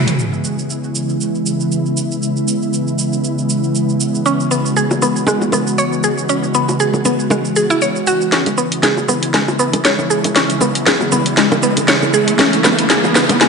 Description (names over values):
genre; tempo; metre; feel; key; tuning
afro house; 118 BPM; 4/4; swing 55% on 16ths; C# minor pentatonic; A4 = 440 Hz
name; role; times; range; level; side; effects
ethereal airy pad; sustained chords; 0.0-13.5 s; C#3 to G#4; -18 LUFS; equal; ensemble chorus, built-in reverb
mallet-like synth pluck; arpeggios; 0.0-0.1, 4.3-13.5 s; G#3 to C#5; -17 LUFS; equal; chorus, phaser, dub echo
house drum kit; drums; 0.1-13.5 s; hi-hat, shaker, snare drum, toms; -17 LUFS; right 1 dB; none
bongos; percussion; 4.9-13.4 s; none; -22 LUFS; equal; none
riser; sound effects; 10.0-13.5 s; none; -22 LUFS; right 2 dB; none
room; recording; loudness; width
wet scoring stage reverb, RT60 1.6 s, digital ambience; nothing above 10.5 kHz; -13 LUFS; side -5 dB against mid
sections
0.2-8.3 A section; 8.3-13.5 B section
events
drum fill 0.0, 8.3-13.5; filter sweep on ambient pad 0.2-8.3; build-up 8.3-13.5; riser 10.0-13.5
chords
0.2 C#m7